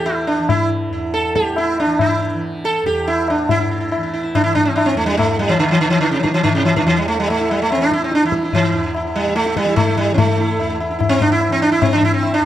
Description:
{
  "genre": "indian classical, Hindustani",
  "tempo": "143 BPM",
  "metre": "4/4",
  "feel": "straight",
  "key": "E raga malkauns",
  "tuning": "A4 = 440 Hz",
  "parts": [
    { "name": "sitar", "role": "melody", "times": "0.0-12.4 s", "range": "C3 to A4", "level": "-16 LUFS", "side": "right 1 dB", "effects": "none" },
    { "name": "tanpura", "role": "drone", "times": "0.0-12.5 s", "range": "E2 to E3", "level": "-25 LUFS", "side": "right 2 dB", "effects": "none" },
    { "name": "tabla", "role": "percussion", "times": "0.1-12.4 s", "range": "none", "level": "-20 LUFS", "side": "left 4 dB", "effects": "none" }
  ],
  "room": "moderate recital hall reverb, RT60 1.6 s",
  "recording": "dark, warm production",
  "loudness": "-14 LUFS",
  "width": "side -12 dB against mid",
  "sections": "0.0-3.5 A section; 3.5-12.5 B section",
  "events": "speeding up 0.0-12.5",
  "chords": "none"
}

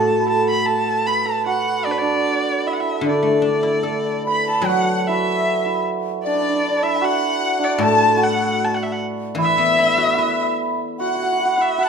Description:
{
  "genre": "chinese traditional, Chinese chamber ensemble",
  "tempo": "76 BPM",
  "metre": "2/4",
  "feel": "rubato",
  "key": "D gong mode",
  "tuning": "A4 = 439 Hz",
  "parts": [
    { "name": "clear erhu", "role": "melody", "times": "0.0-11.9 s", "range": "B4 to B5", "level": "-22 LUFS", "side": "equal", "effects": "none" },
    { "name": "hammered dulcimer", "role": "second line", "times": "0.0-11.9 s", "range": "D4 to B4", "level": "-21 LUFS", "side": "right 5 dB", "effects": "none" },
    { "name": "guzheng", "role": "accompaniment", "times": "0.0-11.8 s", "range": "A2 to B4", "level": "-23 LUFS", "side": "left 3 dB", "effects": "none" },
    { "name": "breathy dizi", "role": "second line", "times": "4.2-11.9 s", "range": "D5 to B5", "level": "-23 LUFS", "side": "left 8 dB", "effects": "none" }
  ],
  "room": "moderate recital hall reverb, RT60 1.5 s",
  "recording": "minimal, uncompressed stereo recording",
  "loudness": "-17 LUFS",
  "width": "side -6 dB against mid",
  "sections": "0.0-4.6 A section; 4.6-11.9 B section",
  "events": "none",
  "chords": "none"
}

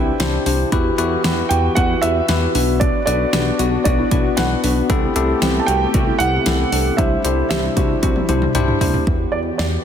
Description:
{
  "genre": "synth-pop",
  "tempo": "115 BPM",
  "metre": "4/4",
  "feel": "straight",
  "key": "E minor",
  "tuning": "A4 = 441 Hz",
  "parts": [
    { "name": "dark baby grand piano", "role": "melody", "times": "0.0-9.6 s", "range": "D5 to A5", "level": "-23 LUFS", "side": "right 4 dB", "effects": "ping-pong delay" },
    { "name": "bell-like tine electric piano", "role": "accompaniment", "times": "0.0-9.0 s", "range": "B3 to D5", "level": "-21 LUFS", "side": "left 6 dB", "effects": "none" },
    { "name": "warm analog pad", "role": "sustained chords", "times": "0.0-9.8 s", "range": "C3 to G4", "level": "-26 LUFS", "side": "left 1 dB", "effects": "chorus" },
    { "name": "warbly dusty pluck", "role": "arpeggios", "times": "0.0-9.0 s", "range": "D4 to A4", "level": "-27 LUFS", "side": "right 5 dB", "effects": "chorus, ping-pong delay" },
    { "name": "chorused synth bass", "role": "bass", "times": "0.0-9.8 s", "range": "B1 to E2", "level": "-21 LUFS", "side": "equal", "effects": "none" },
    { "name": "pop drum kit", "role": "drums", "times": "0.2-9.7 s", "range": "hi-hat, kick drum, snare drum, toms", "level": "-20 LUFS", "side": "equal", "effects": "none" }
  ],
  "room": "moderate concert hall reverb, RT60 2.3 s",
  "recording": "dense, heavily limited modern master",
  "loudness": "-15 LUFS",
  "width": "side -8 dB against mid",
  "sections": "0.0-9.1 A section",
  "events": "drum fill 8.0-9.1",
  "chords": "0.0 Am7/C (rootless); 0.7 Emadd9; 2.5 Bm; 4.9 Am7/C; 7.0 Cadd9; 9.1 Emadd9"
}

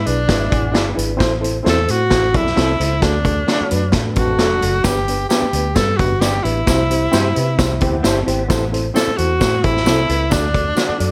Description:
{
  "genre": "uptempo 1960s-style soul",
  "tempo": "132 BPM",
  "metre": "4/4",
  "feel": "straight",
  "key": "unclear",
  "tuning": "A4 = 440 Hz",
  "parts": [
    { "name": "bright tenor saxophone", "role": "melody", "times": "0.0-11.1 s", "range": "D4 to A4", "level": "-22 LUFS", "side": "equal", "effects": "none" },
    { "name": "bright reed electric piano", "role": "accompaniment", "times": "0.0-11.1 s", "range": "G2 to D5", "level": "-24 LUFS", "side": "equal", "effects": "fast tremolo" },
    { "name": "vintage muted fingered electric bass", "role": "bass", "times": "0.0-11.1 s", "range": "F1 to C3", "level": "-23 LUFS", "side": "equal", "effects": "none" },
    { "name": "vintage drum kit", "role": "drums", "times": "0.1-11.1 s", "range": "hi-hat, kick drum, snare drum", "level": "-22 LUFS", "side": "equal", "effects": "none" },
    { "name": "electric guitar through a small old amp", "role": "riff", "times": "0.3-1.2, 3.9-4.8, 7.8-8.7 s", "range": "F#3 to B4", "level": "-31 LUFS", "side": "equal", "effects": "ensemble chorus" },
    { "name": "electric guitar through a small old amp", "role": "stabs", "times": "0.7-10.9 s", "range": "B3 to B4", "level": "-27 LUFS", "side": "equal", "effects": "none" },
    { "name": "tambourine", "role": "percussion", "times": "4.8-10.9 s", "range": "none", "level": "-34 LUFS", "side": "equal", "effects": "none" }
  ],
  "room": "light reverb",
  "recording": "none",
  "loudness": "-17 LUFS",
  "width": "mono",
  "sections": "0.0-11.1 A section",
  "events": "none",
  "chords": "0.0 E7/G#; 1.2 Am; 3.0 D; 4.9 G; 6.7 C; 8.5 Am; 10.3 D"
}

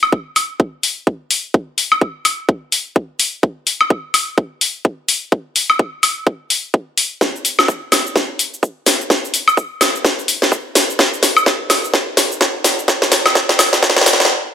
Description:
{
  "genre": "house",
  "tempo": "127 BPM",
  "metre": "4/4",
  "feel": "swing 59% on 16ths",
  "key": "none",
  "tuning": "none",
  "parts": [
    { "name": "house drum kit", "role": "drums", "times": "0.0-14.3 s", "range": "hi-hat, shaker, snare drum, woodblock", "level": "-13 LUFS", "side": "left 1 dB", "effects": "high-pass filter on hats, high-pass filter on snare, high-pass filter on perc, high-pass filter on room" },
    { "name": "electronic kick drum", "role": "drums", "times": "0.1-13.9 s", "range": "none", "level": "-14 LUFS", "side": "equal", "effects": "high-pass filter on kick" }
  ],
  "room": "wet digital room reverb, RT60 0.9 s",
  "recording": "high-pass filter",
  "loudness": "-14 LUFS",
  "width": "side -9 dB against mid",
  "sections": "0.0-14.5 A section",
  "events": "build-up 0.0-14.5; drum fill 7.2-14.3; stop 14.3",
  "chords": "none"
}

